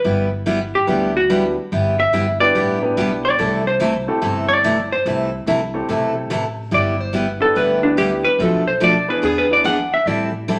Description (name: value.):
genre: country, western swing.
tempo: 144 BPM.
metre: 4/4.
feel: swing 66% on 8ths.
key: G major.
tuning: A4 = 440 Hz.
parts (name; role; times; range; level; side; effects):
vintage hollow-body jazz guitar; second line; 0.0-10.2 s; D4 to F#5; -20 LUFS; equal; none.
picked steel-string acoustic guitar; accompaniment; 0.0-10.6 s; B2 to A4; -23 LUFS; equal; none.
upright bass; bass; 0.0-10.6 s; G1 to E2; -29 LUFS; equal; none.
warm upright piano; accompaniment; 0.9-9.6 s; A3 to B4; -25 LUFS; equal; none.
room: wet large studio reverb, RT60 1.1 s.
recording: none.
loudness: -18 LUFS.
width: mono.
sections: 0.0-10.6 A section.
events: hollow-body jazz guitar solo 0.0-10.6.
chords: 0.0 G6; 3.4 C6; 6.7 G6; 8.4 Bm7b5; 9.2 E7; 10.1 Am7.